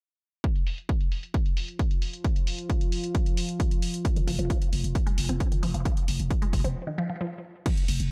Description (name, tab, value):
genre	driving peak-time techno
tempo	133 BPM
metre	4/4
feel	straight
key	unclear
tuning	A4 = 440 Hz
part	deep dark ambient pad	drone	1.6-8.1 s	F3 to F4	-40 LUFS	equal	chorus, built-in reverb, sidechain pumping
part	electronic kick drum	drums	0.4-7.8 s	none	-28 LUFS	equal	overdrive
part	punchy analog drum machine	drums	0.4-8.1 s	crash cymbal, hi-hat	-40 LUFS	equal	low-pass filter on hats, low-pass filter on cymbals
part	resonant blip pluck	riff	4.2-7.7 s	Eb3 to C4	-36 LUFS	equal	phaser, sidechain pumping, delay
part	growling 808-style bass	bass	4.3-8.1 s	F1	-31 LUFS	equal	sidechain pumping, low-pass filter
room	little or no reverb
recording	none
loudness	-28 LUFS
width	mono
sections	0.4-7.7 A section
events	break 6.8-7.7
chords	0.4 F5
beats	| 0.44 0.89 1.34 1.79 | 2.25 2.70 3.15 3.60 | 4.05 4.50 4.95 5.40 | 5.85 6.30 6.76 7.21 | 7.66 8.11